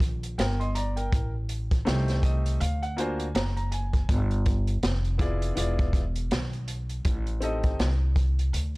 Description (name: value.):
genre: hip hop, jazz-hop.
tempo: 81 BPM.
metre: 4/4.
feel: swing 58% on 16ths.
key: unclear.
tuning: A4 = 442 Hz.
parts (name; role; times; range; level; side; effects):
upright bass; bass; 0.0-8.8 s; E1 to D2; -27 LUFS; equal; none.
open jazz drum kit; drums; 0.0-8.7 s; hi-hat, kick drum, snare drum; -27 LUFS; equal; none.
warm grand piano; accompaniment; 0.4-7.9 s; A3 to C6; -32 LUFS; left 1 dB; none.
room: small room ambience.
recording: dry, gritty hardware recording, cassette tape.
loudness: -24 LUFS.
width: side -24 dB against mid.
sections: 0.0-8.8 A section.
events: grand piano fill 1.9-4.1.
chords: 0.0 Ebmaj7; 1.1 Am7b5; 2.6 D7alt; 4.1 G5; 5.6 E7b9; 7.1 Am7b5.